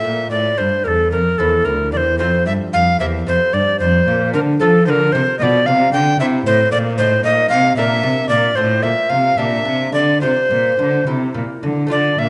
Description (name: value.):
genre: classical, baroque-style sonata movement with continuo.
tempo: 75 BPM (dotted quarters).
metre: 6/8.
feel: rubato.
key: F major.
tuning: A4 = 440 Hz.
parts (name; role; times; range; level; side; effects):
bright tenor recorder; melody; 0.0-12.3 s; A4 to G5; -18 LUFS; equal; none.
lute; accompaniment; 0.0-12.3 s; D2 to D5; -26 LUFS; equal; none.
rich cello; bass; 0.0-12.3 s; D2 to F3; -21 LUFS; equal; none.
room: wet recital hall reverb, RT60 1.6 s.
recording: nothing above 11.0 kHz.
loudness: -16 LUFS.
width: mono.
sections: 0.0-11.9 A section.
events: none.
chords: 0.0 F; 0.6 C7; 2.2 F; 3.0 C7/E; 3.8 F; 5.4 Bdim; 6.2 C; 7.0 Adim; 7.8 Bb; 8.6 F/A; 9.4 Gm/Bb; 10.2 Csus4; 11.1 C.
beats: | 0.58 1.39 | 2.20 3.00 | 3.81 4.61 | 5.41 6.20 | 6.98 7.77 | 8.56 9.38 | 10.22 11.07 | 11.91.